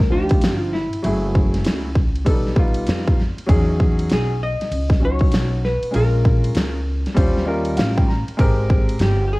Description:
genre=hip hop, jazz-hop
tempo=98 BPM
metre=4/4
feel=swing 63% on 16ths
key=unclear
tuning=A4 = 438 Hz
part: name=vintage hollow-body jazz guitar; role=melody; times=0.0-9.4 s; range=E4 to D#5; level=-25 LUFS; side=equal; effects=none
part: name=upright bass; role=bass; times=0.0-9.4 s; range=F#1 to F2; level=-22 LUFS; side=equal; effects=none
part: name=big-room dance drum kit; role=drums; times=0.0-9.2 s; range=hi-hat, kick drum, ride cymbal, snare drum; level=-18 LUFS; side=equal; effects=cassette tape
part: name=warm upright piano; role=accompaniment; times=0.1-9.2 s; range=F3 to Bb5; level=-24 LUFS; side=equal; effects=cassette tape
room=little or no reverb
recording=home recording on cassette, vinyl crackle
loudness=-16 LUFS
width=side -22 dB against mid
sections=0.0-9.4 A section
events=upright piano fill 7.2-8.4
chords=0.0 Cmadd9 (rootless); 1.0 F#m9; 2.3 Baug7; 3.5 Emaj13; 5.9 Bbm7; 7.2 Eb13; 8.4 Abmaj9

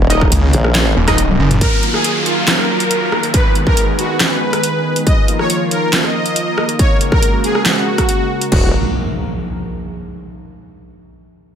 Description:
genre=heavy wobble dubstep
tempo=139 BPM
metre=4/4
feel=half-time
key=Eb minor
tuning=A4 = 440 Hz
part: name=lush unison pad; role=sustained chords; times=0.0-8.7 s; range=Db3 to Cb5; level=-20 LUFS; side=equal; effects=chorus, sidechain pumping
part: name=formant-sweep wobble bass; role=bass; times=0.0-0.9, 8.5-8.7 s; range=Eb1 to Bb1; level=-15 LUFS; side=equal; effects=chorus, overdrive
part: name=orchestra-hit-like synth stab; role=stabs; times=0.1-1.2 s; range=Eb4 to Eb5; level=-20 LUFS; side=right 1 dB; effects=built-in reverb, dub echo
part: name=dubstep drum kit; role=drums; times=0.1-8.6 s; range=crash cymbal, handclaps, hi-hat, rim click, snare drum, toms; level=-17 LUFS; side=equal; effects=overdrive
part: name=electronic kick drum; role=drums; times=0.2-8.6 s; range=none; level=-14 LUFS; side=equal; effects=distortion
part: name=snarling distorted saw bass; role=bass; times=0.3-1.6 s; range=Eb1 to Db2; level=-14 LUFS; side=equal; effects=distortion, overdrive
part: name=soft supersaw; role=melody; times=1.6-8.7 s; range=F4 to Eb5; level=-19 LUFS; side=equal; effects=dub echo
part: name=downlifter and impact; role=sound effects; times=1.6-5.1, 8.5-10.2 s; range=none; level=-22 LUFS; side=equal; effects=none
room=light reverb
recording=none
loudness=-12 LUFS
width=side -8 dB against mid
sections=0.0-1.6 A section; 1.6-8.5 B section; 8.5-10.2 C section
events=drop 0.0-1.6; drum fill 1.3-1.6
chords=0.0 Eb5; 1.6 Ebmadd9; 3.3 Abm; 5.1 Bbsus4; 6.8 Gbadd9; 8.5 Ebmadd9

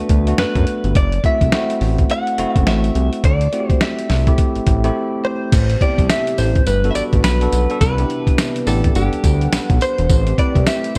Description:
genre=R&B, new jack swing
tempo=105 BPM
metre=4/4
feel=swing 61% on 16ths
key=unclear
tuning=A4 = 437 Hz
part: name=direct-recorded clean electric guitar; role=melody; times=0.0-11.0 s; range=G4 to F#5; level=-25 LUFS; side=equal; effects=lush chorus
part: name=bell-like tine electric piano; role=accompaniment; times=0.0-11.0 s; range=A3 to F#5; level=-25 LUFS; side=equal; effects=none
part: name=fat analog bass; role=bass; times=0.0-11.0 s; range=E1 to F#2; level=-20 LUFS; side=equal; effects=none
part: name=boom bap sampler-style drum kit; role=drums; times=0.1-11.0 s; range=crash cymbal, hi-hat, kick drum, snare drum, tambourine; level=-19 LUFS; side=equal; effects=none
part: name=chorused pulse-width pad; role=sustained chords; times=5.5-11.0 s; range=C3 to F#5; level=-29 LUFS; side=equal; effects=none
room=light reverb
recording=bright 1980s-style digital production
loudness=-17 LUFS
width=mono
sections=0.0-5.5 A section; 5.5-11.0 B section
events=break 5.0-5.5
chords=0.0 Gmaj9; 1.0 F#m7b5; 3.2 D9sus4; 5.5 Am9; 6.7 Gmaj7; 7.8 Cmaj9; 9.0 Gmaj7; 10.1 Am9

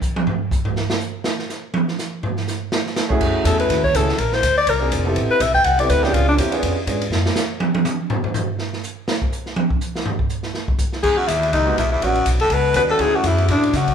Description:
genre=jazz, small-group swing and bop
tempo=245 BPM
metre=4/4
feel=swing 57% on 8ths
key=E major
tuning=A4 = 439 Hz
part: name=open jazz drum kit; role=drums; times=0.0-13.9 s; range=crash cymbal, hi-hat, kick drum, ride cymbal, snare drum, toms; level=-22 LUFS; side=right 1 dB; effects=none
part: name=warm grand piano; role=accompaniment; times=3.1-7.0, 11.7-13.7 s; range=G3 to A4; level=-23 LUFS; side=right 2 dB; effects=none
part: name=upright bass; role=bass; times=3.1-7.2, 11.0-13.9 s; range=E#1 to C#3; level=-21 LUFS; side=equal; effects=none
part: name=clear alto saxophone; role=melody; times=3.5-6.3, 11.0-13.9 s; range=D4 to G5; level=-18 LUFS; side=left 2 dB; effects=none
part: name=edgy baritone saxophone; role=second line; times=11.0-13.9 s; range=D2 to B2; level=-26 LUFS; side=right 2 dB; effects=none
room=moderate large studio reverb, RT60 1.1 s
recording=band playing live in one room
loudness=-17 LUFS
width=side -8 dB against mid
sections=0.0-3.2 A section; 3.2-11.0 A section; 11.0-13.9 B section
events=alto saxophone solo 0.0-11.0; drum solo 0.0-3.2, 7.1-11.0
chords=0.3 N.C.; 2.7 C#5; 3.2 F#m9; 4.2 A#9; 5.2 Am9; 6.1 C#7b9; 7.1 N.C.; 11.0 Emaj7; 12.0 A13; 13.0 Dmaj7

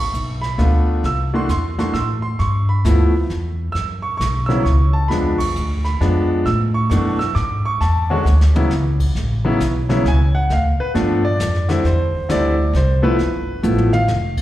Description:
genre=jazz piano trio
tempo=133 BPM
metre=3/4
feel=swing 65% on 8ths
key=A major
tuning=A4 = 442 Hz
part: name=clear grand piano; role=melody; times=0.0-14.4 s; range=B2 to E6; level=-19 LUFS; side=equal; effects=plate reverb, slapback echo
part: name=upright bass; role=bass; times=0.0-14.4 s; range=F1 to A2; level=-18 LUFS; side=equal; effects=none
part: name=jazz brush drum kit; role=drums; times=0.1-14.4 s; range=brushed snare drum, crash cymbal, hi-hat, kick drum, ride cymbal, snare drum, toms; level=-29 LUFS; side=equal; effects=slapback echo
room=moderate club reverb, RT60 0.8 s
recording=live gig heard through the venue's PA, recital hall reverb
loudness=-15 LUFS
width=side -14 dB against mid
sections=0.0-9.2 A section; 9.2-14.4 B section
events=band accent 5.3; drum fill 8.3-8.7, 13.6-14.1; grand piano solo 9.2-14.4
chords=0.0 G7 (rootless); 1.0 C6; 2.4 G6; 3.8 F#5; 5.1 E7b9; 6.5 Amaj7; 9.2 A; 10.5 G7; 11.8 C; 13.2 G13

